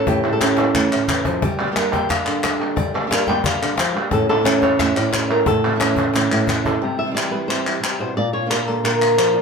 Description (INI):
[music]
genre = flamenco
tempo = 178 BPM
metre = 4/4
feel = straight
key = A phrygian dominant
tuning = A4 = 440 Hz
[part]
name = flamenco guitar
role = melody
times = 0.0-9.4 s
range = A2 to G5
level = -19 LUFS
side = equal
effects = none
[part]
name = flamenco guitar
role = stabs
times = 0.0-9.4 s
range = G2 to G4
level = -27 LUFS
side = right 5 dB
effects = none
[part]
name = cajon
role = percussion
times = 0.1-6.7 s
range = none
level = -26 LUFS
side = left 3 dB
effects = none
[part]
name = palmas hand claps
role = percussion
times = 0.2-9.4 s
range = none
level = -22 LUFS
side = left 1 dB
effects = none
[sound]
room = moderate small room reverb, RT60 0.6 s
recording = band playing live in one room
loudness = -16 LUFS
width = side -5 dB against mid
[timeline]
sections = 0.0-6.8 A section; 6.8-9.4 B section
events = drum fill 0.6-1.4, 6.1-6.8; nylon-string guitar solo 6.8-9.4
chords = 0.0 A; 1.4 Gm; 4.1 A; 6.8 C; 8.2 Bb